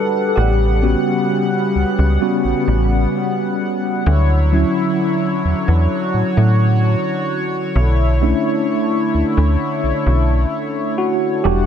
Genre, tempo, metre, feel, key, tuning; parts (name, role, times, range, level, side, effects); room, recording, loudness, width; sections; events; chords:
R&B; 65 BPM; 4/4; straight; A4 = 440 Hz
tine electric piano; accompaniment; 0.0-11.7 s; F#3 to B4; -19 LUFS; equal; medium stereo tremolo, tape echo
chorused pulse-width pad; sustained chords; 0.0-11.7 s; C#3 to F#5; -21 LUFS; left 1 dB
slap-like FM bass; bass; 0.4-11.7 s; E1 to A2; -14 LUFS; equal
light reverb, digital ambience; echo-heavy mix; -14 LUFS; side -8 dB against mid
0.0-11.7 A section
tine electric piano solo 0.0-11.7
0.4 A13; 4.1 Dmaj9; 7.8 Bm11